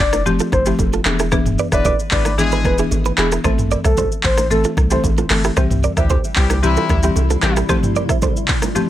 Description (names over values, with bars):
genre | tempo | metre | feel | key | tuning
afrobeats | 113 BPM | 4/4 | straight | unclear | A4 = 440 Hz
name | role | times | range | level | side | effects
soft octave-layered synth lead | melody | 0.0-5.4 s | G#4 to D5 | -21 LUFS | left 1 dB | chorus, digital delay
punchy sub bass | bass | 0.0-7.6 s | E1 to D2 | -19 LUFS | equal | none
afro-pop drum kit | drums | 0.0-8.9 s | handclaps, hi-hat, kick drum, rim click, shaker, toms | -19 LUFS | equal | none
bongos and congas | percussion | 0.1-8.9 s | none | -28 LUFS | right 6 dB | none
buzzing marimba with medium mallets | accompaniment | 0.3-8.9 s | E3 to A4 | -21 LUFS | left 3 dB | none
direct-recorded clean electric guitar | riff | 0.4-8.4 s | E4 to E5 | -23 LUFS | right 8 dB | digital delay
mellow horn section | second line | 1.7-7.5 s | B2 to B4 | -24 LUFS | left 4 dB | digital delay
granular cloud pad | sustained chords | 6.3-8.9 s | C3 to F4 | -27 LUFS | equal | built-in reverb
room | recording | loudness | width
little or no reverb | none | -14 LUFS | side -13 dB against mid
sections
0.0-8.9 A section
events
none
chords
0.0 Fadd9; 1.1 E7; 3.4 Am; 5.6 C; 7.7 Fadd9